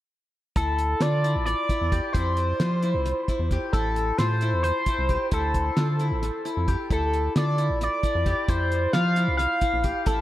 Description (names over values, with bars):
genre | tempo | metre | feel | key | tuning
progressive instrumental, band music in an uneven meter | 265 BPM (eighths) | 7/8 | straight | D minor | A4 = 440 Hz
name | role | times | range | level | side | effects
sync lead | melody | 0.6-10.2 s | A4 to F5 | -26 LUFS | equal | chorus, tape echo
qanun | arpeggios | 0.6-10.2 s | E4 to G4 | -31 LUFS | left 4 dB | tape echo
rubbery square bass | bass | 0.6-10.2 s | A1 to F3 | -25 LUFS | equal | none
cloth-damped thuddy drum kit | drums | 0.6-10.2 s | hi-hat, kick drum, snare drum | -28 LUFS | equal | tape echo
room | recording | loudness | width
light reverb, small room ambience | echo-heavy mix | -22 LUFS | side -14 dB against mid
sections
0.6-10.2 A section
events
none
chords
0.6 Dmadd9; 2.1 F5; 3.7 Am; 5.3 Dmadd9; 8.5 F5